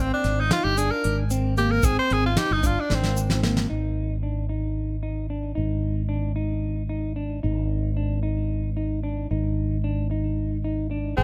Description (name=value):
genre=progressive instrumental, band music in an uneven meter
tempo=225 BPM (eighths)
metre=7/8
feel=straight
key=Ab lydian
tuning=A4 = 440 Hz
part: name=edgy tenor saxophone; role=melody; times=0.0-3.2, 11.2 s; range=C4 to C5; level=-28 LUFS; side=equal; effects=digital delay
part: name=clean electric guitar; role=arpeggios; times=0.0-11.2 s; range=Bb3 to Ab4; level=-32 LUFS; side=equal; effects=digital delay
part: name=fretless electric bass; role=bass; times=0.0-11.2 s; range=G1 to Ab1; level=-28 LUFS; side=equal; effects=ensemble chorus
part: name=soft brush drum kit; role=drums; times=0.2-3.7 s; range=hi-hat, kick drum, snare drum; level=-28 LUFS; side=equal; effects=none
part: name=tube shaker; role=percussion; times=0.8-3.4 s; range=none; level=-38 LUFS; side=equal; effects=none
room=light reverb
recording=none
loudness=-25 LUFS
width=mono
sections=0.0-3.7 A section; 3.7-11.2 B section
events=tenor saxophone solo 0.0-3.7; drum fill 2.9-3.7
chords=0.0 Abmaj7; 3.7 Ab5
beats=0.24 0.51 0.77 1.04 1.30 1.57 | 1.84 2.10 2.37 2.63 2.90 3.17 3.43 | 3.70 3.97 4.23 4.50 4.77 5.04 5.30 | 5.57 5.84 6.10 6.37 6.64 6.91 7.17 | 7.44 7.71 7.97 8.24 8.51 8.78 9.04 | 9.31 9.58 9.84 10.11 10.38 10.64 10.91 | 11.18